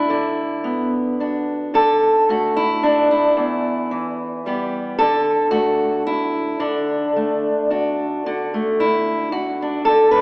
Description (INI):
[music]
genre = folk, solo fingerstyle acoustic guitar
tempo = 111 BPM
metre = 3/4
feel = straight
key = D major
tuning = A4 = 441 Hz
[part]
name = fingerpicked steel-string acoustic guitar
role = solo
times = 0.0-10.2 s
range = E2 to B4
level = -16 LUFS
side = equal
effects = none
[sound]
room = wet church reverb, RT60 2.6 s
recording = recorded in a church or concert hall, AM radio sound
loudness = -17 LUFS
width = side -27 dB against mid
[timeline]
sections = 0.0-8.3 A section; 8.3-10.2 B section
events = none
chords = 0.1 Bm/D; 1.7 D5; 3.4 Em; 5.0 D